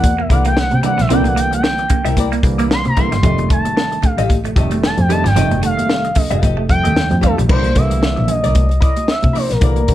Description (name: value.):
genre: funk.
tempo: 113 BPM.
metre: 4/4.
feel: swing 56% on 16ths.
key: C mixolydian.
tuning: A4 = 440 Hz.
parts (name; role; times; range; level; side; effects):
expressive portamento lead; melody; 0.0-9.9 s; A4 to C6; -20 LUFS; left 1 dB; chorus.
hollow-body jazz guitar; accompaniment; 0.0-9.9 s; E4 to F5; -25 LUFS; left 7 dB; wah.
warm double bass; bass; 0.0-9.9 s; F1 to C3; -18 LUFS; equal; none.
compact cocktail drum kit; drums; 0.0-9.9 s; crash cymbal, hi-hat, kick drum, snare drum; -17 LUFS; equal; none.
congas; percussion; 0.0-9.9 s; none; -26 LUFS; right 3 dB; none.
electric guitar at the edge of break-up; riff; 0.2-7.5 s; F3 to C4; -24 LUFS; right 6 dB; phaser.
barky tine electric piano; stabs; 0.3-9.9 s; C3 to Bb3; -22 LUFS; right 4 dB; analog chorus.
room: light reverb.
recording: dark, warm production.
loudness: -13 LUFS.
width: side -13 dB against mid.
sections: 0.0-7.5 A section; 7.5-9.9 B section.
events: analog synth lead solo 0.0-7.5.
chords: 0.0 C9; 3.2 F9; 7.5 C9.